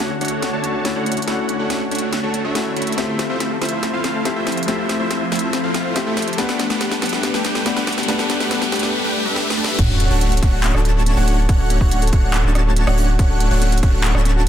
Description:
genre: future bass.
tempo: 141 BPM.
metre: 4/4.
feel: half-time.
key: D major.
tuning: A4 = 440 Hz.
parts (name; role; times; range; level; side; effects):
warm grand piano; accompaniment; 0.0-9.8 s; A3 to F#5; -26 LUFS; left 4 dB; sidechain pumping, tape echo.
ethereal airy pad; sustained chords; 0.0-8.9 s; D3 to C#5; -30 LUFS; equal; ensemble chorus, built-in reverb, phaser, sidechain pumping.
Celtic harp; arpeggios; 0.0-14.5 s; B3 to C#5; -28 LUFS; left 5 dB; sidechain pumping, low-pass filter, tape echo.
supersaw chords; riff; 0.0-14.5 s; A3 to B5; -22 LUFS; right 1 dB; sidechain pumping, low-pass filter, tape echo.
trap drum kit; drums; 0.0-14.3 s; crash cymbal, handclaps, hi-hat, rim click, snare drum; -25 LUFS; equal; soft clipping on snare, high-pass filter on snare, small room ambience, high-pass filter on hats, high-pass filter on cymbals.
riser and sub drop; sound effects; 2.0-11.5 s; none; -27 LUFS; equal; none.
airy dreamy lead; arpeggios; 9.8-14.5 s; F#5 to A5; -28 LUFS; right 1 dB; chorus, sidechain pumping.
saturated sub bass; bass; 9.8-14.5 s; D1; -17 LUFS; equal; sidechain pumping.
electronic kick drum; drums; 9.8-13.9 s; none; -16 LUFS; equal; small room ambience.
room: light reverb.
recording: dense, heavily limited modern master.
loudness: -16 LUFS.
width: side -10 dB against mid.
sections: 0.0-9.8 A section; 9.8-14.5 B section.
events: build-up 0.0-9.8; drum fill 0.0-8.9, 9.4-9.8; filter sweep on harp 0.0-9.8; riser 2.0-9.8; drop 9.8-14.5; impact 9.8-11.5.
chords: 0.0 Dmaj7; 3.0 Fmaj7; 6.4 Gmaj9; 9.8 Dmaj7.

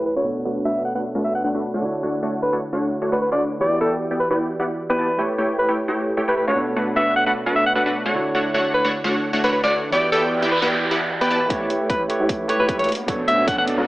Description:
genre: future bass.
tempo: 152 BPM.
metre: 4/4.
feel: half-time.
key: D major.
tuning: A4 = 440 Hz.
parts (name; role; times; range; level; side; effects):
warm alto saxophone; melody; 0.0-13.6 s; A4 to F#5; -21 LUFS; equal; sidechain pumping, low-pass filter, dub echo.
barky tine electric piano; accompaniment; 0.0-13.9 s; B2 to D5; -26 LUFS; right 1 dB; sidechain pumping, dub echo.
supersaw stab; riff; 0.0-13.9 s; A3 to A5; -22 LUFS; equal; sidechain pumping, low-pass filter.
impact, noise sweep and riser; sound effects; 0.0-0.5, 10.3-13.9 s; none; -28 LUFS; right 2 dB; none.
long sustained 808-style bass; bass; 11.5-13.9 s; none; barely audible; none; none.
electronic hi-hat; drums; 11.5-13.8 s; none; -32 LUFS; right 1 dB; none.
electronic kick drum; drums; 11.5-13.6 s; none; -26 LUFS; equal; none.
room: moderate digital room reverb, RT60 0.9 s, digital ambience.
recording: low-pass filter, AM radio sound.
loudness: -18 LUFS.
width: side -18 dB against mid.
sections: 0.0-11.5 A section; 11.5-13.9 B section.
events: impact 0.0-0.5; filter sweep on supersaw synth 0.0-11.5, 11.5-13.9; filter sweep 0.0-11.5; noise sweep 10.3-11.5; build-up 11.5-13.9; filter sweep on alto saxophone 11.5-13.9.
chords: 0.3 Bm7; 1.8 Dmaj7; 3.6 Em7; 5.2 A7; 6.6 Bm7; 8.1 Dmaj7; 9.9 Em7; 11.5 A7; 12.9 Bm7.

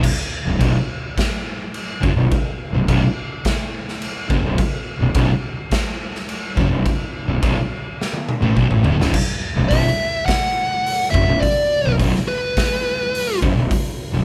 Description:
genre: stoner and doom metal.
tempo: 105 BPM.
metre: 4/4.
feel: straight.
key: B minor.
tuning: A4 = 440 Hz.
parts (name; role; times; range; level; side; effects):
thick fuzz guitar; riff; 0.0-14.2 s; B1 to A2; -25 LUFS; equal; distortion.
raw garage drum kit; drums; 0.0-13.8 s; crash cymbal, hi-hat, kick drum, snare drum, toms; -24 LUFS; equal; none.
thick fuzz guitar; riff; 0.5-14.2 s; B1 to A2; -27 LUFS; equal; none.
fuzz fingered electric bass; bass; 0.5-14.2 s; B0 to A1; -25 LUFS; equal; overdrive.
fuzz lead guitar; melody; 9.7-13.4 s; B4 to F#5; -22 LUFS; equal; distortion.
room: light reverb.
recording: band playing live in one room.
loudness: -20 LUFS.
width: mono.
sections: 0.0-9.1 A section; 9.1-14.2 B section.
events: drum fill 8.0-9.1.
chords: 0.0 B5.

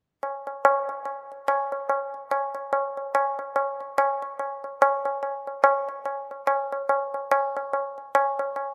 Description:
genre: trip hop.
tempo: 72 BPM.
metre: 4/4.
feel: swing 58% on 16ths.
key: none.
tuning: none.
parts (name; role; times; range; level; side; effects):
tabla; percussion; 0.2-8.7 s; none; -26 LUFS; equal; none.
room: light reverb, small room ambience.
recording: lossy compression artefacts.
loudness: -26 LUFS.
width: mono.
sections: 0.2-8.7 A section.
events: none.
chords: none.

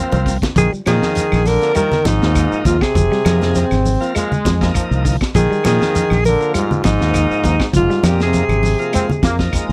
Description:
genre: afrobeat.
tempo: 100 BPM.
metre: 4/4.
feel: swing 54% on 16ths.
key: Bb mixolydian.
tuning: A4 = 439 Hz.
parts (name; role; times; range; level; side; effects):
clear trombone section; second line; 0.0-5.2, 8.9-9.7 s; F3 to C4; -24 LUFS; equal; none.
bright tonewheel organ; accompaniment; 0.0-9.7 s; F3 to F4; -27 LUFS; equal; slow rotary speaker, overdrive.
fingered electric bass; bass; 0.1-9.7 s; F1 to Bb2; -20 LUFS; equal; none.
crunchy breakbeat drum kit; drums; 0.1-9.7 s; hi-hat, kick drum, snare drum; -25 LUFS; equal; none.
congas; percussion; 0.1-9.4 s; none; -25 LUFS; equal; none.
shekere; percussion; 0.1-9.7 s; none; -28 LUFS; equal; none.
clean electric guitar; arpeggios; 0.3-9.4 s; C3 to Ab3; -26 LUFS; equal; spring reverb.
breathy alto saxophone; melody; 0.6-9.4 s; Eb4 to Bb4; -20 LUFS; equal; none.
brilliant trombone; second line; 0.6-9.4 s; Ab2 to Eb3; -25 LUFS; equal; none.
claves; percussion; 0.9-9.7 s; none; -34 LUFS; equal; none.
room: little or no reverb.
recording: dry, close 1970s-style studio recording.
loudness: -16 LUFS.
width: mono.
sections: 0.0-9.7 A section.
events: drum fill 0.0-0.6.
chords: 0.0 F5; 0.6 Bb7sus4; 3.0 Fm7; 5.3 Bb7sus4; 7.7 Fm7.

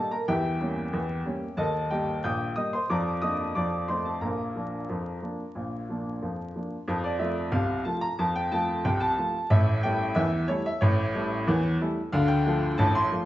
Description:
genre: ragtime piano.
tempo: 91 BPM.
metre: 2/4.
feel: straight.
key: Bb major, F major from 6.9 s.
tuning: A4 = 438 Hz.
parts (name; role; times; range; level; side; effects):
clear upright piano; solo; 0.0-13.3 s; A1 to G6; -25 LUFS; equal; none.
room: wet large studio reverb, RT60 1.1 s.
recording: band playing live in one room, vinyl crackle, nothing above 7.8 kHz.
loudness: -25 LUFS.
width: side -14 dB against mid.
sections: 0.0-6.9 A section; 6.9-13.3 B section.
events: none.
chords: 0.3 Edim7; 1.6 Eb; 2.9 Bb/F; 3.6 F7; 4.2 Bb; 6.9 F; 9.5 A7; 12.1 Dm.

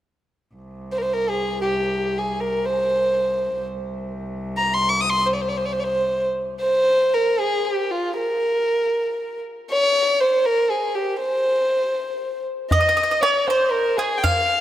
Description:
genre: Persian modal ensemble.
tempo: 79 BPM (dotted quarters).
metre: 6/8.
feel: straight.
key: C dastgah shur.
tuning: A4 = 440 Hz.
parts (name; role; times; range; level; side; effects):
rich cello; drone; 0.5-6.7 s; C2; -31 LUFS; equal; none.
dark violin; melody; 0.9-14.6 s; F4 to Eb6; -19 LUFS; equal; none.
bowl-back mandolin; second line; 12.7-14.6 s; Ab4 to F5; -21 LUFS; right 3 dB; none.
tombak; percussion; 12.7-14.6 s; none; -23 LUFS; left 1 dB; none.
room: wet plate reverb, RT60 3.5 s.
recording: rough home demo mix.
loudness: -19 LUFS.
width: side -12 dB against mid.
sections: 0.5-6.6 A section; 6.6-14.6 B section.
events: none.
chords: none.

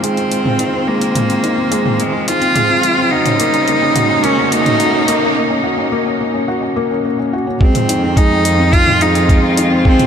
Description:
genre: piano and strings electronica.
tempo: 107 BPM.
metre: 4/4.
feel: straight.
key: unclear.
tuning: A4 = 440 Hz.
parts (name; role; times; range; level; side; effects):
rich cello; melody; 0.0-10.1 s; Ab3 to F4; -15 LUFS; right 1 dB; tape echo.
dark string quartet; sustained chords; 0.0-10.1 s; Db3 to C5; -23 LUFS; left 2 dB; none.
felt-muted upright piano; riff; 0.0-10.1 s; Ab3 to Gb4; -18 LUFS; left 1 dB; tape echo.
deep house drum kit; drums; 0.0-10.1 s; hi-hat, toms; -20 LUFS; right 1 dB; none.
riser; sound effects; 1.4-5.4 s; none; -26 LUFS; right 1 dB; none.
rich studio cello section; bass; 7.6-10.1 s; F2; -18 LUFS; equal; sidechain pumping.
electronic kick drum; drums; 7.6-10.0 s; none; -11 LUFS; equal; none.
room: moderate huge ambient reverb, RT60 7.3 s.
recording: none.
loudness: -12 LUFS.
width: side -8 dB against mid.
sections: 0.0-7.6 A section; 7.6-10.1 B section.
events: build-up 0.0-7.6; riser 1.4-5.4; break 5.4-7.6; drop 7.6-10.1.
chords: 0.0 Fm7; 3.1 Gb; 7.6 Fm7.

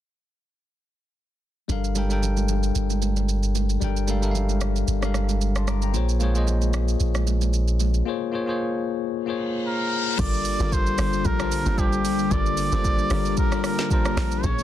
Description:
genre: amapiano.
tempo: 113 BPM.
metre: 4/4.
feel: swing 55% on 16ths.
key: G minor.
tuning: A4 = 440 Hz.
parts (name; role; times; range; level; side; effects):
bell-like tine electric piano; accompaniment; 1.7-14.6 s; Bb2 to D6; -27 LUFS; moving between left 11 dB and left 2 dB; auto-pan.
punchy sub bass; bass; 1.7-8.0 s; G1 to Bb1; -22 LUFS; equal; none.
afro-pop drum kit; drums; 1.7-14.6 s; crash cymbal, hi-hat, kick drum, rim click, shaker, snare drum; -27 LUFS; right 1 dB; soft clipping on snare.
congas; percussion; 1.7-7.9 s; none; -33 LUFS; right 14 dB; none.
reverse cymbal; sound effects; 9.4-10.2 s; none; -30 LUFS; left 6 dB; none.
trumpet with cup mute; melody; 9.7-14.6 s; G4 to D5; -27 LUFS; right 2 dB; digital delay.
string machine, violas; sustained chords; 10.2-14.6 s; D3 to G4; -30 LUFS; right 1 dB; ensemble chorus, sidechain pumping.
tight log drum bass; bass; 10.2-14.6 s; G1 to Bb1; -26 LUFS; equal; none.
room: digital ambience.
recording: dense, heavily limited modern master.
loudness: -21 LUFS.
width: side -12 dB against mid.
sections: 1.7-10.2 A section; 10.2-14.6 B section.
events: break 8.1-10.2; reverse cymbal 9.4-10.2; drop 10.2-14.6.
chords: 1.7 Gm7; 5.9 Bbm7; 10.2 Gm7.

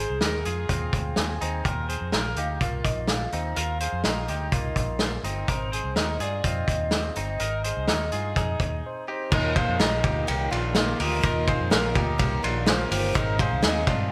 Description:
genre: jangly indie pop.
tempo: 125 BPM.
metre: 4/4.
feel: straight.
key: Eb major.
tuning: A4 = 444 Hz.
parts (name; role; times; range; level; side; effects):
soft octave-layered synth lead; melody; 0.0-14.1 s; Ab4 to Ab5; -34 LUFS; equal; chorus, phaser, slapback echo.
direct-recorded clean electric guitar; arpeggios; 0.0-14.1 s; Bb3 to C5; -33 LUFS; equal; subtle chorus, tape echo.
vintage muted fingered electric bass; bass; 0.0-14.1 s; G1 to G2; -32 LUFS; equal; none.
loose indie drum kit; drums; 0.2-14.0 s; crash cymbal, hi-hat, kick drum, ride cymbal, snare drum; -28 LUFS; equal; none.
chorused retro synth keys; accompaniment; 9.3-14.1 s; Eb4 to Eb5; -40 LUFS; equal; none.
picked steel-string acoustic guitar; accompaniment; 9.3-14.1 s; Ab2 to Bb4; -37 LUFS; equal; tube saturation, slapback echo.
string machine, cellos; sustained chords; 9.3-14.1 s; Eb3 to F4; -41 LUFS; equal; none.
room: moderate lush hall reverb, RT60 2.0 s, small room ambience.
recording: big arena sound.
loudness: -25 LUFS.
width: mono.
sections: 0.0-9.3 A section; 9.3-14.1 B section.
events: break 8.8-9.3.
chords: 0.0 Ebsus2; 5.5 Ab; 9.3 Ebsus2.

